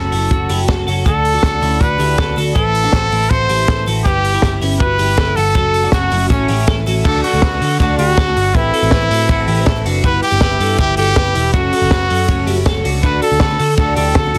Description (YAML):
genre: jangly indie pop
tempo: 160 BPM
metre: 4/4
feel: straight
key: D major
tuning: A4 = 439 Hz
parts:
  - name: bright trumpet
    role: melody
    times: 0.0-14.4 s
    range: C#4 to C5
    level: -20 LUFS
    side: equal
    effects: none
  - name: picked twelve-string acoustic guitar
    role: accompaniment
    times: 0.0-14.4 s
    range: A2 to B4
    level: -27 LUFS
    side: equal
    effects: none
  - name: twelve-string electric guitar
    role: arpeggios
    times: 0.0-14.4 s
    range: B3 to B4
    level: -24 LUFS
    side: equal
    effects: lush chorus
  - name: vintage muted picked electric bass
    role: bass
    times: 0.0-14.4 s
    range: E1 to D3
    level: -21 LUFS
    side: equal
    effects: none
  - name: compact cocktail drum kit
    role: drums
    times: 0.1-14.4 s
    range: crash cymbal, hi-hat, kick drum, ride cymbal, snare drum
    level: -20 LUFS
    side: equal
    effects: soft clipping on snare
  - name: warbly lo-fi synth keys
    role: accompaniment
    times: 7.0-14.4 s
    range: C4 to B4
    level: -30 LUFS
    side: equal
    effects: none
room: little or no reverb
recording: dense, heavily limited modern master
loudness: -14 LUFS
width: mono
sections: 0.0-7.0 A section; 7.0-14.4 B section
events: none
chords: 0.0 F#m; 1.1 D; 2.6 Amadd9; 4.1 Em/G; 5.6 F#m; 6.3 A; 7.0 D; 8.5 Amadd9; 10.0 Em/G; 11.5 F#m; 13.0 D